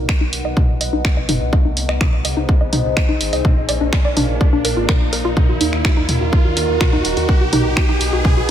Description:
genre	melodic techno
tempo	125 BPM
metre	4/4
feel	straight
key	Eb harmonic minor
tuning	A4 = 440 Hz
part	deep dark ambient pad	sustained chords	0.0-8.5 s	Bb3 to F#5	-24 LUFS	equal	chorus, built-in reverb, sidechain pumping
part	dark detuned saw bass	bass	0.0-8.5 s	Eb1 to Eb2	-24 LUFS	equal	sidechain pumping
part	riser	sound effects	0.4-8.5 s	none	-26 LUFS	right 1 dB	none
part	warbly dusty pluck	arpeggios	0.1-8.4 s	D4 to D#5	-23 LUFS	equal	chorus, sidechain pumping, digital delay
part	electronic kick drum	drums	0.1-8.3 s	none	-15 LUFS	equal	none
part	punchy analog drum machine	drums	0.1-8.3 s	finger snaps, hi-hat, toms	-22 LUFS	right 1 dB	none
room	light reverb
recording	none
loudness	-14 LUFS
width	side -10 dB against mid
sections	0.0-8.5 A section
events	build-up 0.0-8.5; riser 0.4-8.5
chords	0.0 B; 1.5 Ab/C; 3.4 Bb; 5.4 Ebm; 7.3 B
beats	0.09 0.57 1.05 | 1.53 2.01 2.49 2.97 | 3.45 3.93 4.41 4.89 | 5.37 5.85 6.33 6.81 | 7.29 7.77 8.25

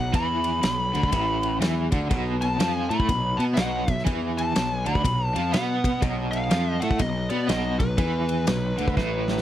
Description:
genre	blues rock power trio and southern rock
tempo	122 BPM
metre	4/4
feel	swing 63% on 8ths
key	unclear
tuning	A4 = 440 Hz
part	fuzz lead guitar	melody	0.0-9.4 s	B4 to B5	-28 LUFS	left 1 dB	distortion
part	crunchy overdriven guitar	riff	0.0-9.4 s	A2 to B3	-28 LUFS	equal	tremolo
part	fuzz picked electric bass	bass	0.0-9.4 s	A1 to B2	-27 LUFS	equal	overdrive
part	big rock drum kit	drums	0.1-9.4 s	kick drum, ride cymbal, snare drum	-27 LUFS	equal	none
room	little or no reverb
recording	dry, close 1970s-style studio recording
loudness	-22 LUFS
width	side -12 dB against mid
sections	0.0-9.4 A section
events	drum fill 9.0-9.4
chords	none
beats	| 0.13 0.62 1.12 1.61 | 2.10 2.59 3.08 3.57 | 4.06 4.55 5.04 5.53 | 6.02 6.51 7.00 7.49 | 7.98 8.48 8.97

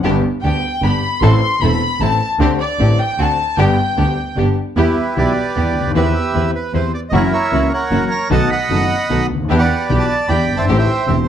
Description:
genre	tango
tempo	152 BPM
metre	3/4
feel	rubato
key	G major, E minor from 4.8 s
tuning	A4 = 439 Hz
part	warm concert grand piano	accompaniment	0.0-11.2 s	E1 to A4	-18 LUFS	left 3 dB	none
part	clear symphonic string section	stabs	0.0-11.2 s	A3 to B4	-25 LUFS	right 2 dB	none
part	clear double bass	bass	0.0-11.2 s	E1 to E2	-19 LUFS	right 2 dB	none
part	rich chamber violin section	second line	0.4-4.4 s	D5 to C6	-19 LUFS	left 2 dB	none
part	bandoneon	melody	4.8-11.3 s	E4 to B5	-18 LUFS	right 3 dB	none
room	moderate large studio reverb, RT60 0.9 s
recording	dark, warm production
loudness	-14 LUFS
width	side -9 dB against mid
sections	0.0-4.8 A section; 4.8-11.3 B section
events	violin section solo 0.0-4.8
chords	0.0 G; 1.2 Am; 2.4 D7sus4; 3.2 D7; 3.6 G; 4.8 Em; 6.0 Cmaj7/E; 7.1 F#7; 8.3 B7; 9.5 Em7; 10.7 Am7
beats	| 0.04 0.43 0.83 | 1.22 1.61 2.01 | 2.40 2.79 3.18 | 3.58 3.97 4.37 | 4.77 5.16 5.56 | 5.95 6.34 6.74 | 7.13 7.52 7.92 | 8.31 8.71 9.10 | 9.50 9.90 10.29 | 10.68 11.08

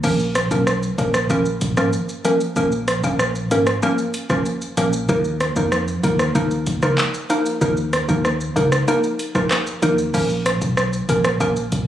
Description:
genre	dancehall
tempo	95 BPM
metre	4/4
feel	straight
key	Bb phrygian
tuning	A4 = 440 Hz
part	hollow square pluck	accompaniment	0.0-11.8 s	F3 to Bb4	-20 LUFS	equal	chorus, sidechain pumping
part	fingered electric bass	bass	0.0-11.8 s	Ab1 to F2	-23 LUFS	equal	none
part	afro-pop drum kit	drums	0.0-11.9 s	crash cymbal, handclaps, hi-hat, kick drum, rim click, shaker	-22 LUFS	right 1 dB	none
room	light reverb, digital ambience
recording	recorded on a phone in the room, club reverb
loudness	-17 LUFS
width	side -11 dB against mid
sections	0.0-10.1 A section; 10.1-11.9 B section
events	none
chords	0.0 Bbm; 5.1 Ebsus2; 10.1 Bbm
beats	| 0.04 0.67 1.30 1.93 | 2.56 3.19 3.83 4.46 | 5.09 5.72 6.35 6.98 | 7.62 8.25 8.88 9.51 | 10.14 10.77 11.40

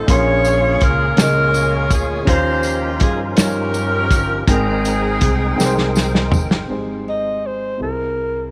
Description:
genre	slow gospel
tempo	54 BPM (dotted quarters)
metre	6/8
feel	straight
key	Ab major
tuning	A4 = 438 Hz
part	clear saxophone section	melody	0.0-6.3 s	C4 to Db5	-21 LUFS	equal	none
part	dark concert grand piano	accompaniment	0.0-8.5 s	Ab2 to C6	-25 LUFS	equal	none
part	percussive tonewheel organ	sustained chords	0.0-6.7 s	F3 to G5	-29 LUFS	equal	slow rotary speaker, overdrive, chorus vibrato
part	upright bass	bass	0.0-8.5 s	G1 to G2	-24 LUFS	equal	none
part	warm soul drum kit	drums	0.1-6.7 s	hi-hat, kick drum, snare drum, toms	-19 LUFS	equal	none
part	tambourine	percussion	0.4-6.7 s	none	-34 LUFS	equal	none
part	breathy alto saxophone	melody	7.1-8.5 s	Bb4 to Eb5	-24 LUFS	equal	none
room	light reverb, small room ambience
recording	none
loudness	-17 LUFS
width	mono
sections	0.0-6.7 A section; 6.7-8.5 B section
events	drum fill 5.6-6.7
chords	0.1 Bbm9; 2.3 Eb13; 4.5 Abmaj9; 6.7 Abmaj7; 7.8 C7b13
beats	| 0.08 1.18 | 2.28 3.38 | 4.48 5.59 | 6.69 7.80

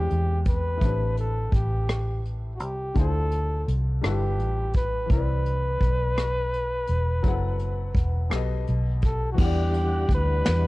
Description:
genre	slow six-eight R&B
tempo	56 BPM (dotted quarters)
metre	6/8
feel	straight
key	E minor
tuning	A4 = 440 Hz
part	warm flugelhorn	melody	0.0-10.7 s	F#4 to B4	-30 LUFS	equal	none
part	warm concert grand piano	accompaniment	0.0-10.7 s	A2 to F#5	-35 LUFS	left 7 dB	none
part	vintage muted fingered electric bass	bass	0.0-10.7 s	E1 to E2	-25 LUFS	equal	none
part	soft brush drum kit	drums	0.1-10.6 s	crash cymbal, hi-hat, kick drum, rim click, snare drum	-24 LUFS	equal	cassette tape
part	tonewheel organ	sustained chords	9.4-10.7 s	E3 to F#5	-31 LUFS	equal	chorus vibrato, slow rotary speaker
room	small room ambience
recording	home recording on cassette, lossy compression artefacts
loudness	-22 LUFS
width	side -20 dB against mid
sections	0.0-9.4 A section; 9.4-10.7 B section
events	none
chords	0.0 E7alt; 0.8 Am11; 3.0 Dm9; 4.0 G13; 5.1 Cmaj7; 7.2 F#m7b5; 8.3 B7b13; 9.4 Em9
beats	| 0.81 1.89 | 2.96 4.03 | 5.10 6.17 | 7.24 8.31 | 9.38 10.46

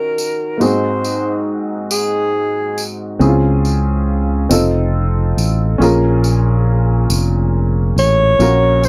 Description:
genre	slow gospel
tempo	46 BPM (dotted quarters)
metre	6/8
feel	straight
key	unclear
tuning	A4 = 439 Hz
part	breathy alto saxophone	melody	0.0-2.8, 8.0-8.9 s	Ab4 to Db5	-18 LUFS	equal	none
part	warm upright piano	accompaniment	0.0-8.9 s	Ab2 to Bb4	-20 LUFS	equal	none
part	tambourine	percussion	0.2-8.9 s	none	-27 LUFS	equal	none
part	fingered electric bass	bass	3.2-8.9 s	F1 to Db2	-17 LUFS	equal	none
room	little or no reverb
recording	dry, close 1970s-style studio recording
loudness	-15 LUFS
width	mono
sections	0.0-8.9 A section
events	none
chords	0.0 Ebm7; 0.6 Ab7; 3.2 Dbmaj7; 4.5 F7; 5.8 Bbm7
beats	| 0.61 1.91 | 3.21 4.50 | 5.80 7.10 | 8.39

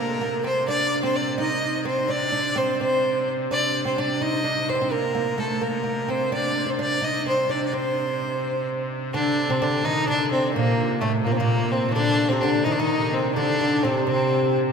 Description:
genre	medieval dance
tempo	85 BPM (dotted quarters)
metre	6/8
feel	straight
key	C dorian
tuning	A4 = 441 Hz
part	clear fiddle	melody	0.0-14.6 s	A3 to Eb5	-24 LUFS	left 1 dB	none
part	oud	second line	0.0-14.6 s	A2 to Eb4	-25 LUFS	right 3 dB	none
part	pipe organ, clarinet reed	drone	0.0-14.7 s	C3	-33 LUFS	equal	none
part	rich viola da gamba	second line	9.1-14.6 s	A3 to Eb4	-26 LUFS	left 5 dB	none
room	wet cathedral reverb, RT60 5.5 s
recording	recorded in a church or concert hall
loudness	-21 LUFS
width	side -6 dB against mid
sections	0.0-9.1 A section; 9.1-14.7 A section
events	none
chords	none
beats	| 0.68 1.38 | 2.09 2.79 | 3.50 4.20 | 4.91 5.61 | 6.32 7.02 | 7.73 8.43 | 9.14 9.84 | 10.55 11.25 | 11.96 12.66 | 13.37 14.07

